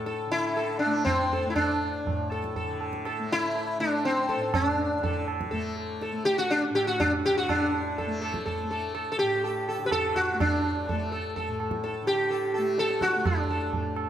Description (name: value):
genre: indian classical, Hindustani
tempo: 123 BPM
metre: 3/4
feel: straight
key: A raga bageshri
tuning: A4 = 437 Hz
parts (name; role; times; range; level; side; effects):
- sitar; melody; 0.0-13.9 s; C4 to B4; -26 LUFS; left 1 dB; tape echo
- tanpura; drone; 0.0-14.1 s; A2 to A3; -36 LUFS; left 1 dB; none
- tabla; percussion; 0.1-14.1 s; none; -32 LUFS; right 4 dB; none
room: moderate recital hall reverb, RT60 1.3 s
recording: none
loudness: -25 LUFS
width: side -10 dB against mid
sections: 0.0-7.5 A section; 7.5-14.1 B section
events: speeding up 0.0-14.1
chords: none